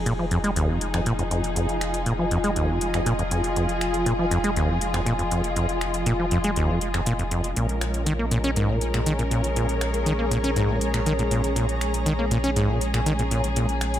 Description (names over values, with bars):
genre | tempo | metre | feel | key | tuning
acid house | 120 BPM | 4/4 | straight | F minor | A4 = 437 Hz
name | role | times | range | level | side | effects
clear symphonic string section | sustained chords | 0.0-14.0 s | F3 to Bb4 | -30 LUFS | left 1 dB | none
warm sub bass | bass | 0.0-14.0 s | F1 to Bb1 | -29 LUFS | equal | none
granular cloud pad | texture | 0.0-14.0 s | F4 to Bb5 | -29 LUFS | equal | built-in reverb
acid bass, saw | riff | 0.1-13.7 s | Eb2 to Db4 | -24 LUFS | equal | tape echo
electro analog drum machine | drums | 0.1-14.0 s | finger snaps, hi-hat | -32 LUFS | left 1 dB | overdrive
room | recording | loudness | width
light reverb, studio reverb | echo-heavy mix | -21 LUFS | side -11 dB against mid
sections
0.0-14.0 A section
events
none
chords
0.0 Fm7; 7.6 Bbm7